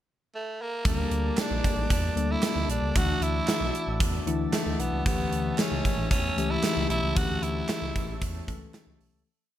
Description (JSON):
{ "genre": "1980s-style pop", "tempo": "114 BPM", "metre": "4/4", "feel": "straight", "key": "unclear", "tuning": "A4 = 439 Hz", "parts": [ { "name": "breathy tenor saxophone", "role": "melody", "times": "0.3-8.2 s", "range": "A3 to F#4", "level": "-31 LUFS", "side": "right 2 dB", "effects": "none" }, { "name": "mellow tine electric piano", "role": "accompaniment", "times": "0.8-9.3 s", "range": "E3 to A4", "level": "-31 LUFS", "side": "left 5 dB", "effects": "analog chorus" }, { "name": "pipe organ, flutes", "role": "sustained chords", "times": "0.8-9.2 s", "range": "Bb3 to A5", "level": "-39 LUFS", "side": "right 3 dB", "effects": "none" }, { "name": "smooth gliding synth bass", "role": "bass", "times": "0.8-9.2 s", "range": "A1 to E2", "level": "-31 LUFS", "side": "equal", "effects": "none" }, { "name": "gated 80s drum kit", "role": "drums", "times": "0.8-9.1 s", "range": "hi-hat, kick drum, snare drum", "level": "-28 LUFS", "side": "right 1 dB", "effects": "gated reverb" }, { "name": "group handclap", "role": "percussion", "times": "1.4-8.9 s", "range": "none", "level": "-41 LUFS", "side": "right 5 dB", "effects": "none" } ], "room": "studio ambience", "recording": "none", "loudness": "-24 LUFS", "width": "side -12 dB against mid", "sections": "0.0-0.8 pickup bar; 0.8-9.3 pre-chorus", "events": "fade-out 7.2-9.3", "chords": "0.0 N.C.; 0.8 Gmadd9; 3.0 Dadd9; 5.1 A7", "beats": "0.32 | 0.85 1.38 1.90 2.43 | 2.96 3.48 4.01 4.53 | 5.06 5.59 6.11 6.64 | 7.17 7.69 8.22 8.74" }